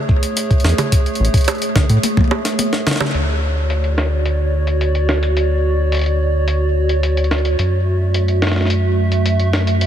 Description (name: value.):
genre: IDM.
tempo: 108 BPM.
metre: 4/4.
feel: straight.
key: D lydian.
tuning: A4 = 440 Hz.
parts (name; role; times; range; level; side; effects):
warbly tape-like pad; sustained chords; 0.0-9.9 s; A3 to E5; -21 LUFS; right 2 dB; chorus, built-in reverb.
electronic kick drum; drums; 0.1-2.3 s; none; -14 LUFS; equal; none.
jungle sampler-style drum kit; drums; 0.2-9.9 s; bongos, hi-hat, snare drum, toms; -21 LUFS; equal; low-pass filter on hats, low-pass filter on perc, low-pass filter on snare, low-pass filter on toms, ping-pong delay.
round analog bass; bass; 0.6-9.9 s; A1 to A2; -16 LUFS; equal; none.
room: light reverb.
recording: none.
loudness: -14 LUFS.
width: side -10 dB against mid.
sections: 0.0-3.1 A section; 3.1-9.9 B section.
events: drum fill 2.0-3.1; kick drops out 2.6-3.1; band accent 2.9.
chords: 0.0 Amaj7; 3.1 Dmaj7; 7.6 F#m7.